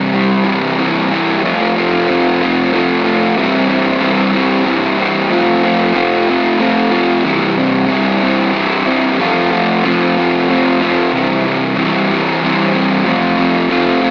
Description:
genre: rock.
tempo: 62 BPM (dotted quarters).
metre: 6/8.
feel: straight.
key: F major.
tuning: A4 = 440 Hz.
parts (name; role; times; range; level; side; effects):
fuzz guitar; solo; 0.0-14.1 s; C3 to F4; -10 LUFS; equal; distortion, slapback echo.
room: wet concert hall reverb, RT60 2.0 s.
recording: big arena sound, AM radio sound.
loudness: -10 LUFS.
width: side -25 dB against mid.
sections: 0.0-1.4 A section; 1.4-14.1 B section.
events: none.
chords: 0.0 C; 1.4 F; 3.4 C; 5.3 F; 7.3 C; 9.2 F; 11.1 C; 13.1 F.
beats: 0.46 | 1.43 2.40 | 3.38 4.35 | 5.32 6.29 | 7.25 8.22 | 9.19 10.16 | 11.12 12.09 | 13.06 14.02.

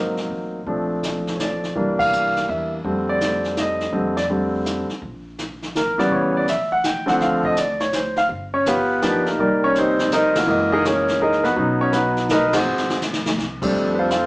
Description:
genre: jazz piano trio.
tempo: 165 BPM.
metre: 3/4.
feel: swing 65% on 8ths.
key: F major.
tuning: A4 = 437 Hz.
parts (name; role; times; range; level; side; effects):
clear concert grand piano; melody; 0.0-14.3 s; F2 to G5; -18 LUFS; equal; none.
upright bass; bass; 0.0-14.3 s; Gb1 to Ab2; -33 LUFS; equal; none.
jazz brush drum kit; drums; 0.2-14.3 s; brushed snare drum, crash cymbal, hi-hat, kick drum, ride cymbal, snare drum; -26 LUFS; equal; none.
room: wet studio reverb, RT60 0.7 s.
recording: heard from further back in the room, small speaker sound.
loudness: -18 LUFS.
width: side -24 dB against mid.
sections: 0.0-5.0 A section; 5.0-13.7 B section.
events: band accent 1.9, 10.3, 12.5; drum fill 12.7-13.4.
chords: 0.0 Ab9; 0.7 Bbmaj9; 1.8 C9; 2.8 F6; 5.0 N.C.; 6.1 A7; 7.2 Dm7; 8.3 G7b13; 9.4 Cm7; 10.5 Gb13; 11.6 B; 12.7 Ab7; 13.4 C5; 13.7 F6.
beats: 0.30 | 0.66 1.02 1.39 | 1.75 2.12 2.48 | 2.85 3.21 3.57 | 3.94 4.30 4.66 | 5.03 5.39 5.75 | 6.12 6.48 6.84 | 7.21 7.57 7.93 | 8.29 8.66 9.02 | 9.38 9.75 10.11 | 10.47 10.84 11.20 | 11.56 11.92 12.29 | 12.65 13.01 13.38 | 13.74 14.10.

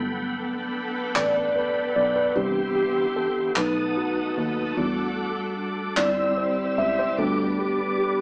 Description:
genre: slow gospel.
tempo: 50 BPM (dotted quarters).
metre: 6/8.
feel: straight.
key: G major.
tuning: A4 = 438 Hz.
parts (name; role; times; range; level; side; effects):
mellow tine electric piano; accompaniment; 0.0-8.2 s; E3 to E5; -26 LUFS; equal; none.
tonewheel organ; sustained chords; 0.0-8.2 s; B3 to E6; -33 LUFS; equal; fast rotary speaker, chorus vibrato.
warm studio string section; sustained chords; 0.0-8.2 s; C3 to B4; -37 LUFS; equal; none.
fingered electric bass; bass; 0.0-8.2 s; G1 to E2; -34 LUFS; equal; none.
group handclap; percussion; 1.2-6.3 s; none; -28 LUFS; equal; none.
room: moderate large studio reverb, RT60 0.9 s.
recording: band playing live in one room, small speaker sound.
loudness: -25 LUFS.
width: mono.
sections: 0.0-8.2 A section.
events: tine electric piano solo 0.0-8.2.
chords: 0.0 Gmaj9; 2.4 Cmaj7; 3.6 B7; 4.8 Em11; 6.0 C/G; 7.2 G/D.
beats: 1.15 | 2.36 3.56 | 4.77 5.97 | 7.18.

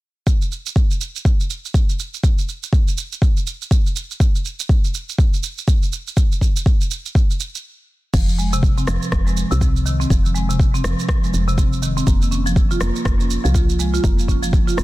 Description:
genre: afro house.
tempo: 122 BPM.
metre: 4/4.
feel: swing 59% on 16ths.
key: F minor.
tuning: A4 = 439 Hz.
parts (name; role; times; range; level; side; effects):
deep house drum kit; drums; 0.3-14.8 s; crash cymbal, rim click, shaker; -28 LUFS; right 4 dB; soft clipping on snare.
electronic kick drum; drums; 0.3-14.6 s; none; -16 LUFS; equal; none.
marimba with medium hard mallets; arpeggios; 8.1-14.8 s; C3 to F4; -22 LUFS; equal; sidechain pumping, dub echo.
woody FM bass; bass; 8.1-14.8 s; F1 to C2; -21 LUFS; equal; sidechain pumping.
room: little or no reverb.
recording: dense, heavily limited modern master.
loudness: -16 LUFS.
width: side -18 dB against mid.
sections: 0.3-8.1 A section; 8.1-14.8 B section.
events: stop 7.6-8.1.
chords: 0.3 N.C.; 8.1 F5; 12.1 Bbm/F.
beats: | 0.27 0.76 1.25 1.74 | 2.23 2.73 3.22 3.71 | 4.20 4.69 5.19 5.68 | 6.17 6.66 7.15 7.64 | 8.14 8.63 9.12 9.61 | 10.10 10.60 11.09 11.58 | 12.07 12.56 13.05 13.55 | 14.04 14.53.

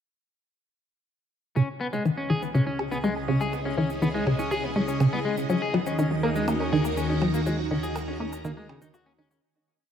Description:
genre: ambient, sequencer-driven space music.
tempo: 122 BPM.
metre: 4/4.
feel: straight.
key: C# dorian.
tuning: A4 = 440 Hz.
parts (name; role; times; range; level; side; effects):
phased string machine; sustained chords; 2.8-9.4 s; C#3 to A#5; -30 LUFS; equal; ensemble chorus, phaser.
semi-hollow electric guitar; arpeggios; 1.6-9.4 s; C#3 to G#4; -30 LUFS; left 2 dB; auto-pan, low-pass filter, tape echo, shimmer reverb.
resonant blip pluck; riff; 1.6-9.4 s; C#3 to A#4; -26 LUFS; equal; wide subtle chorus, tape echo.
fat analog bass; bass; 1.6-9.4 s; C#2 to D#2; -38 LUFS; right 1 dB; none.
shaker and percussion blips; percussion; 1.6-9.4 s; none; -43 LUFS; right 4 dB; tape echo.
twinkling granular texture; texture; 2.4-9.4 s; D#5; -41 LUFS; right 2 dB; built-in reverb, shimmer reverb.
room: moderate plate reverb, RT60 3.3 s.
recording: none.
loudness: -24 LUFS.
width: side -8 dB against mid.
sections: 1.6-9.4 A section.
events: fade-in on string machine 1.6-9.4; fade-in on analog synth bass 1.6-9.4; fade-in on synth texture 1.6-9.4; fade-in on drum 1.6-9.4; filter sweep on synth arpeggio sound 1.6-9.4; fade-out 6.8-9.4.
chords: 1.6 C#madd9; 5.5 D#m.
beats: | 1.56 2.05 2.55 3.04 | 3.53 4.02 4.51 5.00 | 5.50 5.99 6.48 6.97 | 7.46 7.96 8.45 8.94.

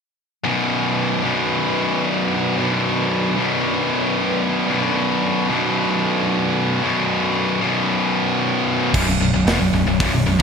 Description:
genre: heavy metal.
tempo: 113 BPM.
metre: 4/4.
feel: straight.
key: B minor.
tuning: A4 = 440 Hz.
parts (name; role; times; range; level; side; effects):
heavy high-gain guitar; riff; 0.4-10.4 s; B1 to B2; -19 LUFS; left 6 dB; distortion.
scooped high-gain guitar; riff; 0.4-10.4 s; B1 to B2; -22 LUFS; right 12 dB; distortion.
airy breathy pad; sustained chords; 0.8-8.9 s; F#3 to D5; -30 LUFS; right 3 dB; chorus, phaser.
growling picked electric bass; bass; 8.9-10.4 s; B0 to E1; -21 LUFS; right 1 dB; overdrive.
tight metal drum kit; drums; 8.9-10.4 s; crash cymbal, hi-hat, kick drum, snare drum; -22 LUFS; right 2 dB; none.
room: moderate plate reverb, RT60 2.3 s.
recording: bright 1980s-style digital production.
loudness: -17 LUFS.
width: side -6 dB against mid.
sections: 0.5-8.9 A section; 8.9-10.4 B section.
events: none.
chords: 0.5 Bm; 8.9 B5.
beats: | 0.46 0.99 1.52 2.05 | 2.58 3.11 3.64 4.17 | 4.70 5.23 5.76 6.29 | 6.82 7.35 7.88 8.41 | 8.95 9.47 10.01.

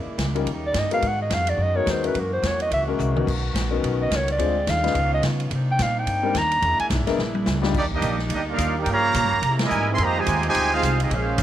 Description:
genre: jazz, big band swing.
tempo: 214 BPM.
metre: 4/4.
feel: swing 60% on 8ths.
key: unclear.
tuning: A4 = 440 Hz.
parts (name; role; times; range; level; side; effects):
clear saxophone section; sustained chords; 0.0-11.4 s; C3 to A#4; -32 LUFS; equal; none.
upright bass; bass; 0.0-11.4 s; E1 to Db3; -25 LUFS; equal; none.
swinging big-band drum kit; drums; 0.2-11.4 s; crash cymbal, hi-hat, kick drum, ride cymbal, snare drum, toms; -29 LUFS; equal; none.
warm baby grand piano; accompaniment; 0.3-7.7 s; G3 to C5; -27 LUFS; left 8 dB; none.
breathy clarinet; melody; 0.7-6.9 s; Bb4 to Bb5; -24 LUFS; right 1 dB; none.
clear trombone section; second line; 7.7-11.4 s; Bb2 to G4; -29 LUFS; right 10 dB; none.
clear trumpet section; melody; 7.8-11.4 s; Bb3 to C6; -22 LUFS; right 2 dB; tape echo.
room: light reverb, small room ambience.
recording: 1960s-style stereo with parts hard left and right.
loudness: -20 LUFS.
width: side -11 dB against mid.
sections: 0.0-7.8 A section; 7.8-11.4 B section.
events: clarinet solo 0.0-7.8; drum fill 3.0, 7.2-7.8; band accent 9.6.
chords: 0.5 Eb7; 1.0 Abm7; 2.1 Gb7; 3.3 Bmaj7; 4.4 Dm7b5; 5.0 Db9; 5.5 Cm9; 6.6 E7#11; 7.8 Ebmaj7; 8.9 Gm7b5; 9.4 C7alt; 10.0 Fm9.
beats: 0.19 0.47 0.75 | 1.03 1.31 1.59 1.87 | 2.15 2.43 2.71 2.99 | 3.27 3.55 3.83 4.11 | 4.39 4.67 4.95 5.23 | 5.51 5.79 6.07 6.35 | 6.63 6.91 7.19 7.47 | 7.75 8.03 8.31 8.59 | 8.87 9.15 9.43 9.71 | 9.98 10.26 10.54 10.82 | 11.10 11.38.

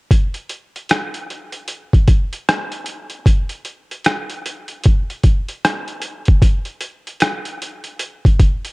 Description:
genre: hip hop.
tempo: 76 BPM.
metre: 4/4.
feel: swing 63% on 16ths.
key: none.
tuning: none.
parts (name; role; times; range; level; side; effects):
boom bap sampler-style drum kit; drums; 0.1-8.7 s; hi-hat, kick drum, rim click; -15 LUFS; equal; overdrive.
room: light reverb.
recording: cassette tape.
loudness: -15 LUFS.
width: side -26 dB against mid.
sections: 0.1-8.7 A section.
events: none.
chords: none.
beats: | 0.10 0.89 1.68 2.47 | 3.26 4.05 4.84 5.63 | 6.42 7.21 8.00.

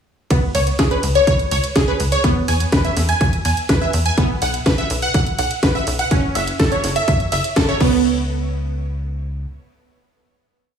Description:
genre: progressive house.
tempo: 124 BPM.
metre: 4/4.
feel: straight.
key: C# minor.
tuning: A4 = 441 Hz.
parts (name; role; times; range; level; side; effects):
wide unison pluck; arpeggios; 0.3-8.3 s; B3 to G#5; -19 LUFS; right 2 dB; phaser, sidechain pumping, tape echo.
tight sequencer bass; bass; 0.3-9.5 s; F#1 to F#2; -22 LUFS; equal; sidechain pumping.
electronic kick drum; drums; 0.3-7.9 s; none; -19 LUFS; equal; overdrive.
house drum kit; drums; 0.3-7.9 s; crash cymbal, hi-hat, ride cymbal, snare drum; -23 LUFS; equal; overdrive.
room: light reverb.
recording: studio reverb.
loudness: -16 LUFS.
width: side -7 dB against mid.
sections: 0.3-8.0 drop; 8.0-10.8 final hit.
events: drop 0.3-8.0; band accent 7.6.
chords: 0.3 C#5; 2.2 N.C.; 7.8 Bsus2/C#; 8.0 N.C..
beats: | 0.30 0.79 1.27 1.76 | 2.24 2.72 3.21 3.69 | 4.18 4.66 5.14 5.63 | 6.11 6.59 7.08 7.56 | 8.05 8.53 9.02.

